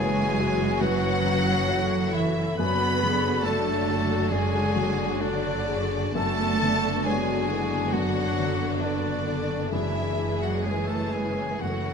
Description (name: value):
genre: cinematic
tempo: 60-72 BPM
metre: 4/4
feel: rubato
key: F# minor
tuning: A4 = 441 Hz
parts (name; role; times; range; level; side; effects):
- warm symphonic violin section; melody; 0.0-11.9 s; D5 to B5; -32 LUFS; left 1 dB; none
- bright clarinet; second line; 0.0-11.9 s; D4 to B4; -33 LUFS; left 2 dB; none
- silver concert flute; second line; 0.0-11.9 s; D5 to B5; -34 LUFS; left 1 dB; none
- warm symphonic violin section; second line; 0.0-11.9 s; C#4 to G#4; -33 LUFS; left 3 dB; none
- felt-muted upright piano; accompaniment; 0.0-11.9 s; F#2 to D5; -32 LUFS; left 2 dB; none
- warm symphonic viola section; accompaniment; 0.0-11.9 s; D3 to B3; -33 LUFS; right 1 dB; none
- dark French horn section; sustained chords; 0.0-11.9 s; D4 to B4; -32 LUFS; left 6 dB; none
- dark symphonic double bass section; bass; 0.0-11.9 s; F#1; -31 LUFS; right 3 dB; none
- warm symphonic cello section; bass; 0.0-11.9 s; D3 to B3; -30 LUFS; right 3 dB; none
room: light reverb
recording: close, detailed microphones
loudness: -23 LUFS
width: side -6 dB against mid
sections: 0.0-11.9 A section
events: none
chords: 0.0 F#m7; 2.6 D/F#; 6.2 Bmadd9/F#; 9.7 C#m/F#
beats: 0.81 1.68 | 2.59 3.46 4.33 5.21 | 6.17 7.05 7.94 8.83 | 9.73 10.65 11.62